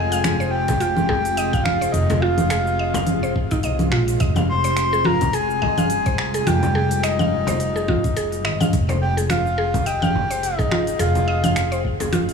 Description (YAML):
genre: organic downtempo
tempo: 106 BPM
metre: 4/4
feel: swing 56% on 16ths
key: F minor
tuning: A4 = 443 Hz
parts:
  - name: breathy flute-like synth lead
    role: melody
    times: 0.0-11.8 s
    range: Eb5 to C6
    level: -24 LUFS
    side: left 1 dB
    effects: chorus, tape echo
  - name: bowed-like drone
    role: sustained chords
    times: 0.0-12.3 s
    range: C3 to Ab4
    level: -26 LUFS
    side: right 1 dB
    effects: built-in reverb, sidechain pumping
  - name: mallet-like synth pluck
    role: arpeggios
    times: 0.0-12.3 s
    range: Eb4 to F5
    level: -26 LUFS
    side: right 1 dB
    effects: chorus, tape echo
  - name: upright bass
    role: bass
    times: 0.0-12.3 s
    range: F1 to C2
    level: -24 LUFS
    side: equal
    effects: tube saturation
  - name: organic electronic drum kit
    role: drums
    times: 0.1-12.3 s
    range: congas, finger snaps, hi-hat, shaker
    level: -24 LUFS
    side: equal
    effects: none
  - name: electronic kick drum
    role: drums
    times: 0.7-12.0 s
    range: none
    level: -23 LUFS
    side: equal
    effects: none
  - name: frame drum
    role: percussion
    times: 0.7-12.1 s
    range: none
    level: -28 LUFS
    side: left 4 dB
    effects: none
room: light reverb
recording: studio reverb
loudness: -18 LUFS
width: side -6 dB against mid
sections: 0.0-12.3 A section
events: none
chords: 0.0 Fmadd9